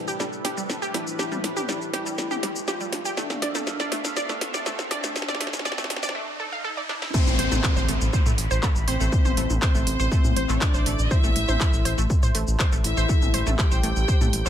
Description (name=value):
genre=melodic techno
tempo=121 BPM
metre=4/4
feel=straight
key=A minor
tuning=A4 = 439 Hz
part: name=soft octave-layered synth lead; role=melody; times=0.0-14.5 s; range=C4 to G4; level=-32 LUFS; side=left 2 dB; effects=chorus, sidechain pumping, digital delay
part: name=sweeping resonant pad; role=sustained chords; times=0.0-14.5 s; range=A2 to B5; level=-36 LUFS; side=equal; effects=chorus, sidechain pumping
part: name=overtone-sweeping drone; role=drone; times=0.0-6.2 s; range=A2 to C3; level=-45 LUFS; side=left 2 dB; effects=none
part: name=riser and downlifter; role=sound effects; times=0.4-11.1 s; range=none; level=-34 LUFS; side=equal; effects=none
part: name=wide unison pluck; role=arpeggios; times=0.1-14.5 s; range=G3 to F5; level=-30 LUFS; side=right 2 dB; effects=sidechain pumping, digital delay
part: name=techno drum kit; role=drums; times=0.1-14.5 s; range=crash cymbal, handclaps, hi-hat, shaker, snare drum, toms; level=-28 LUFS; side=left 1 dB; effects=none
part: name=clear chamber violin section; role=second line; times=7.1-14.5 s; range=C5 to G5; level=-32 LUFS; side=equal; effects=sidechain pumping, digital delay
part: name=electronic kick drum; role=drums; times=7.1-14.2 s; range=none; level=-22 LUFS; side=equal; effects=none
part: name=round analog bass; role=bass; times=7.3-14.5 s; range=A1 to A2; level=-25 LUFS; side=equal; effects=sidechain pumping
room=light reverb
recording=high-pass filter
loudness=-21 LUFS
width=side -10 dB against mid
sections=0.0-7.1 A section; 7.1-14.5 B section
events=build-up 0.0-7.1; drum fill 0.0-6.2, 6.9; filter sweep on soft synth lead 0.0-7.1; filter sweep 0.0-7.1; riser 0.4-7.1; break 6.2-7.1; drop 7.1-14.5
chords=0.0 Gadd9/A; 3.2 Dm/A; 7.1 Am